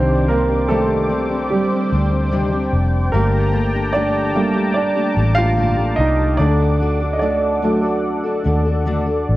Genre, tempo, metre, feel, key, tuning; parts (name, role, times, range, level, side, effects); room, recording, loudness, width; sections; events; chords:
pop ballad; 74 BPM; 4/4; straight; A4 = 439 Hz
warm grand piano; accompaniment; 0.0-9.4 s; Eb3 to F5; -19 LUFS; right 2 dB
warm analog pad; sustained chords; 0.0-9.4 s; A4 to D6; -24 LUFS; equal; chorus
fingerpicked steel-string acoustic guitar; arpeggios; 0.0-9.4 s; G2 to A4; -23 LUFS; left 4 dB
vintage muted fingered electric bass; bass; 0.0-9.4 s; F1 to Eb2; -19 LUFS; equal
light reverb, studio reverb; worn, warbling old tape, cassette tape, warbly pitch drift; -15 LUFS; side -16 dB against mid
0.0-9.4 A section
grand piano solo 0.0-9.4
0.0 Cmadd9; 3.1 Gmadd9; 6.4 D